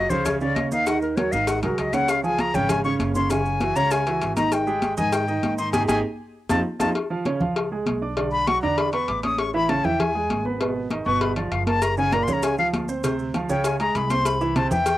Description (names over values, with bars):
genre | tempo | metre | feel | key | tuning
Afro-Cuban jazz | 197 BPM | 4/4 | straight | unclear | A4 = 442 Hz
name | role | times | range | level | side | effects
breathy silver concert flute | second line | 0.0-15.0 s | Bb4 to Eb6 | -24 LUFS | left 3 dB | cassette tape
warm grand piano | accompaniment | 0.0-15.0 s | Bb2 to D6 | -25 LUFS | right 3 dB | cassette tape
upright bass | bass | 0.0-15.0 s | Gb1 to Ab2 | -30 LUFS | equal | none
congas | percussion | 0.1-15.0 s | none | -29 LUFS | left 1 dB | none
maracas | percussion | 0.1-6.9, 11.8-15.0 s | none | -40 LUFS | right 5 dB | none
cowbell | percussion | 0.3-15.0 s | none | -28 LUFS | left 4 dB | none
room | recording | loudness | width
moderate booth ambience, RT60 0.2 s | home recording on cassette | -20 LUFS | side -14 dB against mid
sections
0.0-7.0 A section; 7.0-15.0 A section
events
flute solo 0.0-15.0; band accent 5.7-7.0; drum fill 6.0-7.0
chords
0.0 N.C.; 0.9 Ebmadd11; 1.5 Ab7; 2.1 Db; 3.3 Gbsus2; 4.5 Ab5; 6.3 F7; 7.0 Db7b9; 8.2 Bm; 8.8 E5; 9.4 Amaj9; 10.6 Abm; 11.2 G7; 11.8 Gbmaj7; 13.0 Dm7; 13.6 Db5; 14.3 Cmaj7